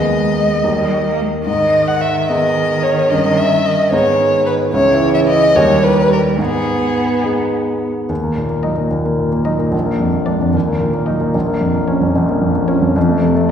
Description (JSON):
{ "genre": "quick classical-period movement for piano trio", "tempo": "74 BPM (dotted quarters)", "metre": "6/8", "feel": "straight", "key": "G# minor, Eb minor from 8.1 s", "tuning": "A4 = 437 Hz", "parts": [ { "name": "warm violin", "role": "melody", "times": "0.0-12.9 s", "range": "G#4 to F#5", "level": "-16 LUFS", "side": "left 1 dB", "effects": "none" }, { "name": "warm cello", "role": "second line", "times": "0.0-12.9 s", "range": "D#3 to B3", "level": "-21 LUFS", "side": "right 3 dB", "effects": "none" }, { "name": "warm concert grand piano", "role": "accompaniment", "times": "0.0-13.5 s", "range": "Bb1 to A#4", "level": "-16 LUFS", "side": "equal", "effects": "none" } ], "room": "wet recital hall reverb, RT60 1.6 s", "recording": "recorded in a church or concert hall", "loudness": "-13 LUFS", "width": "side -8 dB against mid", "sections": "0.0-8.1 A section; 8.1-13.5 B section", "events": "none", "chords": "0.0 G#m/D#; 0.6 D#; 1.5 G#m; 3.1 D#7/G; 3.9 G#m; 4.7 C#m; 5.5 D#; 6.4 G#m; 8.1 Ebm; 9.7 Bb7; 10.5 Ebm; 11.3 Bbm; 13.0 F" }